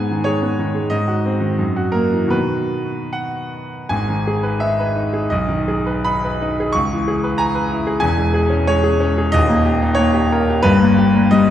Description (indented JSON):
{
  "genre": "classical, romantic character piece for solo piano",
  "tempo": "69-93 BPM",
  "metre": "2/4",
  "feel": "rubato",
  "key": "B major, G# minor from 3.9 s",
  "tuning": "A4 = 441 Hz",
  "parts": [
    { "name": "bright grand piano", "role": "solo", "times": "0.0-11.5 s", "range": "D#1 to C#6", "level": "-15 LUFS", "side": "equal", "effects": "none" }
  ],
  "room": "wet scoring stage reverb, RT60 2.0 s",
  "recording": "heard from further back in the room",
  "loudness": "-15 LUFS",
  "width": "side -11 dB against mid",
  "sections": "0.0-3.9 A section; 3.9-11.5 B section",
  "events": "none",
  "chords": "0.0 G#m; 0.9 G#7; 1.6 F#7; 2.3 B; 3.9 G#m; 5.3 G#m/B; 6.7 C#m7; 8.0 C#m/E; 9.4 D#; 10.7 D#/G"
}